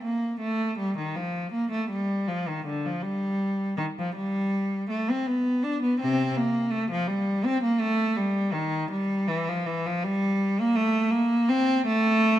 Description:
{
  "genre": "classical, baroque-style suite movement for unaccompanied cello",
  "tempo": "81 BPM",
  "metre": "4/4",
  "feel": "rubato",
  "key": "unclear",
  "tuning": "A4 = 440 Hz",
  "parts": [
    { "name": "rich cello", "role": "solo", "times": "0.0-12.4 s", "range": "C3 to D4", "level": "-24 LUFS", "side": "equal", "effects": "none" }
  ],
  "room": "moderate recital hall reverb, RT60 1.8 s",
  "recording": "minimal, uncompressed stereo recording",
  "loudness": "-24 LUFS",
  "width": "side -12 dB against mid",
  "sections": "0.0-12.4 A section",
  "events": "none",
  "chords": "none"
}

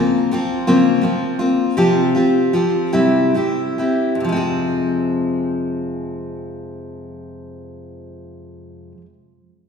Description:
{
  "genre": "folk",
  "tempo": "44-56 BPM (dotted quarters)",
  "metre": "6/8",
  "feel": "straight",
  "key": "F minor",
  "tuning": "A4 = 440 Hz",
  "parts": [
    { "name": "picked steel-string acoustic guitar", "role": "accompaniment", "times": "0.0-9.1 s", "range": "F2 to Ab4", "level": "-17 LUFS", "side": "left 1 dB", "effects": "none" }
  ],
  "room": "wet recital hall reverb, RT60 1.8 s",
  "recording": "recorded in a church or concert hall",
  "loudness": "-15 LUFS",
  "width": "side -6 dB against mid",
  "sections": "0.0-4.2 A section; 4.2-9.6 B section",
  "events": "slowing down 0.0-4.2",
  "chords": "0.0 Bbmadd9; 1.8 Csus4; 2.9 C; 4.2 Fm"
}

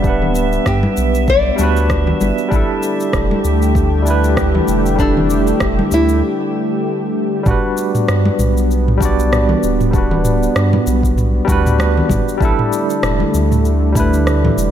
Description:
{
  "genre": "sunset chillout",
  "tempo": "97 BPM",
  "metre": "4/4",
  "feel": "swing 57% on 16ths",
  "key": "G major",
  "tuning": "A4 = 439 Hz",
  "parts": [
    { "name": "barky tine electric piano", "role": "accompaniment", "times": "0.0-14.7 s", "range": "G3 to F#5", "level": "-18 LUFS", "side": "right 1 dB", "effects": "medium stereo tremolo, auto-pan, tape echo" },
    { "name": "lush unison pad", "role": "sustained chords", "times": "0.0-14.7 s", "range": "D3 to G4", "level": "-21 LUFS", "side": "equal", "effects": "chorus" },
    { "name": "warm sub bass", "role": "bass", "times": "0.0-14.7 s", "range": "D1 to G2", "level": "-17 LUFS", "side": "equal", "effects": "none" },
    { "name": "electronic kick drum", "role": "drums", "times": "0.0-14.1 s", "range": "none", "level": "-19 LUFS", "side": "equal", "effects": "studio reverb" },
    { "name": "smooth R&B drum kit", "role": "drums", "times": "0.0-14.7 s", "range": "rim click, shaker, toms", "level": "-22 LUFS", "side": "right 1 dB", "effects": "studio reverb" },
    { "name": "drifting glass-harmonics texture", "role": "texture", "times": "0.0-6.2 s", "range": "E5", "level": "-28 LUFS", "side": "right 6 dB", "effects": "chorus, built-in reverb" },
    { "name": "congas", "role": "percussion", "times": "0.2-14.6 s", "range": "none", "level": "-23 LUFS", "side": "left 2 dB", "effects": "none" },
    { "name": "nylon-string guitar", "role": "melody", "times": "0.7-6.2 s", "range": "D4 to D5", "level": "-20 LUFS", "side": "left 2 dB", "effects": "tape echo" }
  ],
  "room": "light reverb, digital ambience",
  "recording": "none",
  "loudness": "-13 LUFS",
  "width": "side -10 dB against mid",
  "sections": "0.0-7.5 A section; 7.5-14.7 A section",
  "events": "break 6.2-7.5",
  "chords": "0.0 Gmaj7; 2.5 A7sus4; 7.5 Gmaj7; 12.4 A7sus4"
}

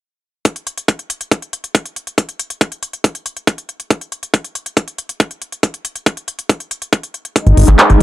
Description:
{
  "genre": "psychedelic trance",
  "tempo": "139 BPM",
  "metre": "4/4",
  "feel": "straight",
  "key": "unclear",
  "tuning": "A4 = 440 Hz",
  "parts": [
    { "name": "big-room dance drum kit", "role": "drums", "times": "0.5-8.0 s", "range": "handclaps, hi-hat, rim click", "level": "-18 LUFS", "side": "equal", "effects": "overdrive" },
    { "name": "electronic kick drum", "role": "drums", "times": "0.5-7.9 s", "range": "none", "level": "-12 LUFS", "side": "equal", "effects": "high-pass filter on kick" },
    { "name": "bubbling stepped-filter texture", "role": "sustained chords", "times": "7.4-8.0 s", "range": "G#3 to D#4", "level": "-16 LUFS", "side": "left 1 dB", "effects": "chorus, built-in reverb, sidechain pumping" },
    { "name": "plucky analog bass", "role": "bass", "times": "7.5-8.0 s", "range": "G#1", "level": "-7 LUFS", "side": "equal", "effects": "none" }
  ],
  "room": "little or no reverb",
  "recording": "dark, warm production",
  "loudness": "-15 LUFS",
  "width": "side -15 dB against mid",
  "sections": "0.5-8.0 A section",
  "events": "none",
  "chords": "0.5 G#5"
}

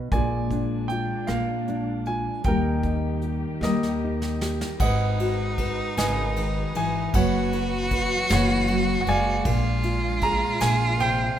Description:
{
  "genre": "acoustic folk-pop ballad",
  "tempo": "52 BPM (dotted quarters)",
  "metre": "6/8",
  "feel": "straight",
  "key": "G# minor",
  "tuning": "A4 = 440 Hz",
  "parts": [
    { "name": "nylon-string guitar", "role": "accompaniment", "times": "0.0-11.4 s", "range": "G#2 to B4", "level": "-28 LUFS", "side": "left 1 dB", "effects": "none" },
    { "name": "clear concert grand piano", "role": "melody", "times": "0.1-11.4 s", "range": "G4 to A#5", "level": "-28 LUFS", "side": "right 3 dB", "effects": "none" },
    { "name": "muted chamber string section", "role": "sustained chords", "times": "0.1-11.4 s", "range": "D#3 to B4", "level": "-36 LUFS", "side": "equal", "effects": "none" },
    { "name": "upright bass", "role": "bass", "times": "0.1-11.3 s", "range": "F#1 to D#2", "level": "-26 LUFS", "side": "equal", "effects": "none" },
    { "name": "soft brush drum kit", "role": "drums", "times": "0.1-11.2 s", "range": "crash cymbal, hi-hat, kick drum, ride cymbal, rim click, snare drum", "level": "-30 LUFS", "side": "equal", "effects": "none" },
    { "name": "clear cello", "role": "second line", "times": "4.8-11.4 s", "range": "D#4 to F#4", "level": "-28 LUFS", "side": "equal", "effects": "none" }
  ],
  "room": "light reverb",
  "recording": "minimal, uncompressed stereo recording",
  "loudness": "-22 LUFS",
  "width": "side -10 dB against mid",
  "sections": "0.0-4.8 A section; 4.8-11.4 B section",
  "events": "drum fill 3.6-4.8",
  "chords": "0.1 A#7; 2.4 D#; 4.8 G#m7; 7.1 F#7sus4; 9.5 A#7"
}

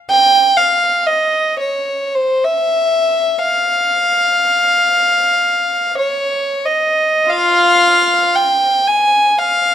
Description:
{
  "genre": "classical, free, expressive piece for unaccompanied violin",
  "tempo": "38-63 BPM",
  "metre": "3/4",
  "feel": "rubato",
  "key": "F minor",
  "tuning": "A4 = 440 Hz",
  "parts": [
    { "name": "warm violin", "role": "solo", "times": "0.1-9.7 s", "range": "F4 to Ab5", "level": "-12 LUFS", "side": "equal", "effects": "none" }
  ],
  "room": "moderate recital hall reverb, RT60 1.3 s",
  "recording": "close, detailed microphones",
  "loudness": "-12 LUFS",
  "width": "side -10 dB against mid",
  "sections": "0.0-7.3 A section; 7.3-9.7 B section",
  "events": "none",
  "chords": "none"
}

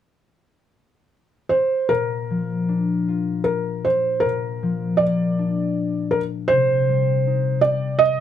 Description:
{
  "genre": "children's music, lullaby",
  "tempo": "78 BPM",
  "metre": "3/4",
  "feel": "rubato",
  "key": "Bb major",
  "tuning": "A4 = 442 Hz",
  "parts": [
    { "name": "felt-muted upright piano", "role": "melody", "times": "1.5-8.2 s", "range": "Bb4 to Eb5", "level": "-20 LUFS", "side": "right 2 dB", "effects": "none" },
    { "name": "concert harp", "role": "accompaniment", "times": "1.9-8.2 s", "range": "Bb2 to G4", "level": "-22 LUFS", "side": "left 4 dB", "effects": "none" }
  ],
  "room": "light reverb",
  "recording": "close, detailed microphones",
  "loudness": "-19 LUFS",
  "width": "side -10 dB against mid",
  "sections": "0.0-1.9 A section; 1.9-8.2 B section",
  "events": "none",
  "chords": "0.0 N.C.; 1.9 Bb; 6.5 Cm"
}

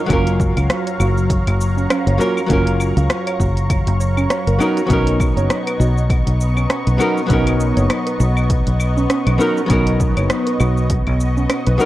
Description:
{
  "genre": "sunset chillout",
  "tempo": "100 BPM",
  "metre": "4/4",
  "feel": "swing 57% on 16ths",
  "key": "unclear",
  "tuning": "A4 = 440 Hz",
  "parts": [
    { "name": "lush unison pad", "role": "sustained chords", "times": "0.0-11.9 s", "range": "Gb3 to Db6", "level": "-24 LUFS", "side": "left 1 dB", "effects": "chorus, phaser" },
    { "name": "archtop guitar, miked and amplified", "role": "accompaniment", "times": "0.1-11.9 s", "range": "Gb3 to Bb4", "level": "-20 LUFS", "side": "equal", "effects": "auto-pan, tape echo" },
    { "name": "soft round pluck", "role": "arpeggios", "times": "0.1-11.9 s", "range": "Db4 to F5", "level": "-25 LUFS", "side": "right 3 dB", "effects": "chorus, tape echo" },
    { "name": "fingered electric bass", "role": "bass", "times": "0.1-11.8 s", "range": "Gb1 to Db2", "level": "-17 LUFS", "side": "equal", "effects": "none" },
    { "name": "deep house drum kit", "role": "drums", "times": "0.1-11.9 s", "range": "claves, hi-hat, rim click, shaker", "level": "-24 LUFS", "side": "equal", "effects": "overdrive" },
    { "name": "electronic kick drum", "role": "drums", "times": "0.1-11.0 s", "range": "none", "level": "-20 LUFS", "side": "equal", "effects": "overdrive" }
  ],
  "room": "light reverb",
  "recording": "worn, warbling old tape, cassette tape, warbly pitch drift",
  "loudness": "-14 LUFS",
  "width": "side -15 dB against mid",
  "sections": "0.0-11.9 A section",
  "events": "none",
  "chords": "0.1 Gbmaj7; 4.6 Bmaj9"
}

